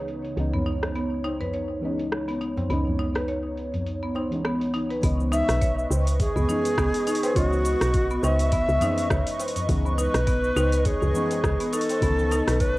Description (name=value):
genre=organic downtempo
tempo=103 BPM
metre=4/4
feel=swing 56% on 16ths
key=C# minor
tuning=A4 = 440 Hz
part: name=Native American-style cedar flute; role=melody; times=0.0-0.1, 5.3-12.8 s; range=F#4 to E5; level=-26 LUFS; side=equal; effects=analog delay
part: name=deep mellow chord stab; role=accompaniment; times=0.0-12.8 s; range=D#3 to D#5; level=-33 LUFS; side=left 1 dB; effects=chorus, phaser, sidechain pumping, cassette tape, analog delay
part: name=airy breathy pad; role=sustained chords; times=0.0-12.8 s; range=C#3 to C#6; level=-32 LUFS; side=right 1 dB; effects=chorus, sidechain pumping, cassette tape
part: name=marimba with medium hard mallets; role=arpeggios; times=0.0-12.8 s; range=B3 to C#5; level=-30 LUFS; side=equal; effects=low-pass filter, cassette tape, analog delay
part: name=woody FM bass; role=bass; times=0.0-12.8 s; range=B1 to C#2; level=-26 LUFS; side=equal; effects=sidechain pumping
part: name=deep house drum kit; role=drums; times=0.1-12.7 s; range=cabasa, hi-hat, rim click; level=-33 LUFS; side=equal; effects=overdrive, low-pass filter on hats, cassette tape, low-pass filter on snare, low-pass filter on perc
part: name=tabla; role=percussion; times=0.5-12.3 s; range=none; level=-33 LUFS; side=left 1 dB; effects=none
part: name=electronic kick drum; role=drums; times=5.0-12.7 s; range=none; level=-26 LUFS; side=equal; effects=overdrive, cassette tape
room=light reverb, digital ambience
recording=home recording on cassette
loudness=-22 LUFS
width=side -19 dB against mid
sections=0.0-5.0 A section; 5.0-12.8 B section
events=none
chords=0.0 C#m9